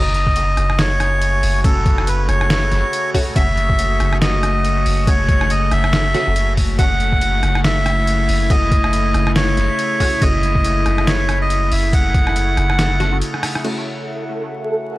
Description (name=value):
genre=deep dubstep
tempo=140 BPM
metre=4/4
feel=swing 58% on 16ths, half-time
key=F# dorian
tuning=A4 = 440 Hz
part: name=melodica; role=melody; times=0.0-13.2 s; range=A4 to F#5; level=-20 LUFS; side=equal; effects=vintage 12-bit sampler grit, dub echo
part: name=overtone-sweeping drone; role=sustained chords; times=0.0-15.0 s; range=C#3 to F#4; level=-24 LUFS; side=left 2 dB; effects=chorus, built-in reverb
part: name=filtered dub chord stab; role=stabs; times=0.0-10.3, 13.0-13.8 s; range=A3 to F#4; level=-28 LUFS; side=left 1 dB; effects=phaser, dub echo
part: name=soft dub sub bass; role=bass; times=0.0-13.2 s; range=F#1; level=-18 LUFS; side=equal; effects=none
part: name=trip hop sampler-style drum kit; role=drums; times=0.1-13.7 s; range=crash cymbal, hi-hat, rim click, snare drum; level=-24 LUFS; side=equal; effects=none
part: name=electronic kick drum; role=drums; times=0.3-12.2 s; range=none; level=-17 LUFS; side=equal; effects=none
part: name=flickering grainy texture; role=texture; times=14.0-15.0 s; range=A4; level=-24 LUFS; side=right 1 dB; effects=built-in reverb
room=digital ambience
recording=dry, gritty hardware recording, transformer saturation, vinyl crackle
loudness=-14 LUFS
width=side -18 dB against mid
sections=0.0-13.6 A section; 13.6-15.0 B section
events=drop 0.0-13.6; break 13.2-13.6; drum fill 13.3-13.6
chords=0.0 F#m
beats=0.36 0.79 1.22 | 1.64 2.07 2.50 2.93 | 3.36 3.79 4.21 4.64 | 5.07 5.50 5.93 6.36 | 6.79 7.21 7.64 8.07 | 8.50 8.93 9.36 9.79 | 10.21 10.64 11.07 11.50 | 11.93 12.36 12.79 13.21 | 13.64 14.07 14.50 14.93